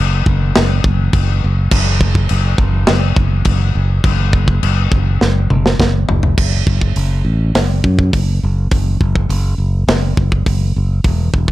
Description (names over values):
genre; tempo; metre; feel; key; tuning
heavy metal; 103 BPM; 4/4; straight; F# minor; A4 = 441 Hz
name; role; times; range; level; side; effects
modern bright fingered electric bass; bass; 0.0-11.5 s; E1 to F#2; -14 LUFS; equal; none
tight metal drum kit; drums; 0.3-11.5 s; china cymbal, crash cymbal, hi-hat, kick drum, snare drum, toms; -16 LUFS; equal; none
room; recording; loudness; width
little or no reverb; dark, warm production; -12 LUFS; side -16 dB against mid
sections
0.0-6.4 A section; 6.4-11.5 B section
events
drum fill 5.2-6.4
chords
none